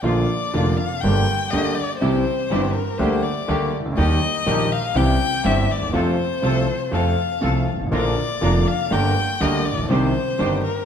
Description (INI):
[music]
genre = tango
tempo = 122 BPM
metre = 4/4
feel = rubato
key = Bb major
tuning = A4 = 440 Hz
[part]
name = warm violin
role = second line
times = 0.0-10.8 s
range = Bb4 to G5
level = -24 LUFS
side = left 5 dB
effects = none
[part]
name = warm concert grand piano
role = accompaniment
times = 0.0-10.6 s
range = F1 to G4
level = -21 LUFS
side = equal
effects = none
[part]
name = muted studio string section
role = stabs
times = 0.0-10.6 s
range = Bb3 to C5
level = -29 LUFS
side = right 1 dB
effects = none
[part]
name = upright bass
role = bass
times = 0.0-10.6 s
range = F1 to F2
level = -25 LUFS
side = right 1 dB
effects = none
[sound]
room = wet recital hall reverb, RT60 1.5 s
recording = recorded in a church or concert hall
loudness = -18 LUFS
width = side -8 dB against mid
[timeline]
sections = 0.0-10.8 A section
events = violin solo 0.0-10.8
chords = 0.0 Bb; 1.0 Gm; 2.0 C; 3.0 Gm/D; 4.0 Eb; 5.0 C; 5.9 F; 7.9 Bb; 8.9 Gm; 9.9 Cm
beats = | 0.03 0.53 1.03 1.52 | 2.01 2.50 3.00 3.48 | 3.97 4.46 4.95 5.44 | 5.94 6.43 6.92 7.42 | 7.92 8.42 8.92 9.41 | 9.90 10.39